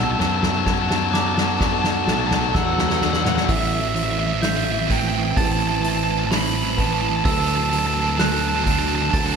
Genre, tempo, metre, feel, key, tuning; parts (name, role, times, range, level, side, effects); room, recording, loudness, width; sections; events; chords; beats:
post-rock; 64 BPM; 4/4; straight; A dorian; A4 = 439 Hz
biting lead guitar; melody; 0.0-9.4 s; E5 to B5; -24 LUFS; equal; overdrive, ping-pong delay
icy glass pad; sustained chords; 0.0-9.4 s; D3 to E5; -31 LUFS; right 2 dB; chorus, built-in reverb
electric guitar through a small old amp; arpeggios; 0.0-9.4 s; A2 to B4; -31 LUFS; left 1 dB; spring reverb, ping-pong delay
glockenspiel with soft plastic mallets; arpeggios; 0.0-9.4 s; D6 to A6; -30 LUFS; right 3 dB; ping-pong delay
distorted electric guitar; riff; 0.0-3.5 s; B2 to F#3; -25 LUFS; left 8 dB; overdrive
fingered electric bass; bass; 0.0-9.4 s; A1 to F#2; -26 LUFS; equal
soft-mallet drum kit; drums; 0.2-9.4 s; hi-hat, kick drum, snare drum, toms; -24 LUFS; equal
sludgy distorted guitar; riff; 3.5-9.4 s; A2 to F#3; -24 LUFS; right 11 dB; overdrive
moderate plate reverb, RT60 2.5 s; dreamy mix soaked in reverb; -18 LUFS; side -6 dB against mid
0.0-3.5 A section; 3.5-9.4 B section
build-up 0.0-3.5; drum fill 0.0-3.5
0.0 Bm7; 3.5 Amadd9; 7.2 Dadd9
0.66 1.60 2.54 | 3.48 4.43 5.37 6.31 | 7.25 8.19 9.13